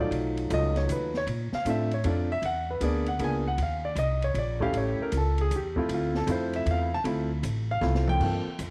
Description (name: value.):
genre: jazz piano trio.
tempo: 156 BPM.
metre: 3/4.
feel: swing 66% on 8ths.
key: unclear.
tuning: A4 = 439 Hz.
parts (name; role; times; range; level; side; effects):
warm concert grand piano; melody; 0.0-8.6 s; F#3 to A5; -31 LUFS; equal; none.
upright bass; bass; 0.0-8.7 s; A1 to Bb2; -31 LUFS; equal; none.
open jazz drum kit; drums; 0.1-8.7 s; crash cymbal, hi-hat, kick drum, ride cymbal, snare drum, toms; -41 LUFS; equal; none.
room: light reverb, studio ambience.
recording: none.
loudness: -28 LUFS.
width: mono.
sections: 0.0-8.2 A section.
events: grand piano solo 0.0-8.7; drum fill 7.8-8.2.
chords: 0.1 B7#11; 1.3 Bbmaj7; 2.4 E7#11; 3.6 Eb5; 4.7 A7; 5.9 Dm7.